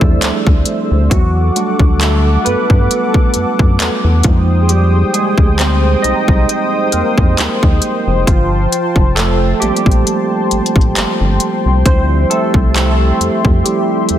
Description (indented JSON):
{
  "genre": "contemporary R&B",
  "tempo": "67 BPM",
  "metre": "4/4",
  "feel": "swing 54% on 16ths",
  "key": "D minor",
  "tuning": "A4 = 439 Hz",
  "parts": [
    { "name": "barky tine electric piano", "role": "accompaniment", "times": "0.0-14.2 s", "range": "F3 to Eb5", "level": "-16 LUFS", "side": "right 3 dB", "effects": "ensemble chorus" },
    { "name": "warm analog pad", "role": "sustained chords", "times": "0.0-14.2 s", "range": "G4 to E6", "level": "-20 LUFS", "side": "left 3 dB", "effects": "chorus" },
    { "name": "rubbery square bass", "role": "bass", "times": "0.0-14.2 s", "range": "F1 to G2", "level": "-14 LUFS", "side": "equal", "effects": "none" },
    { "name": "trap drum kit", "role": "drums", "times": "0.0-14.2 s", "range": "handclaps, hi-hat, kick drum", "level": "-14 LUFS", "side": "equal", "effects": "none" }
  ],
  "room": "light reverb",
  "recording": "dense, heavily limited modern master",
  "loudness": "-10 LUFS",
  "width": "side -11 dB against mid",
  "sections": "0.0-14.2 A section",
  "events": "tine electric piano solo 0.0-14.2",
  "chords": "0.0 Dm11; 1.1 Em11; 4.2 Fm11; 8.3 Gm11; 11.9 Dm11",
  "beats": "0.22 | 1.11 2.01 2.90 3.80 | 4.69 5.59 6.48 7.38 | 8.28 9.17 10.07 10.96 | 11.86 12.75 13.65"
}